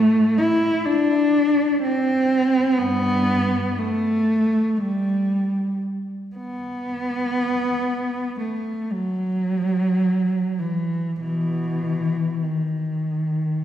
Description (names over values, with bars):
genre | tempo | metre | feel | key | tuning
classical, free, expressive piece for unaccompanied cello | free time | none | none | unclear | A4 = 441 Hz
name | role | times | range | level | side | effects
dark cello | solo | 0.0-13.6 s | G2 to E4 | -19 LUFS | equal | none
room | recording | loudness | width
wet concert hall reverb, RT60 2.2 s | recorded in a church or concert hall | -19 LUFS | side -10 dB against mid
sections
0.0-13.6 A section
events
none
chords
none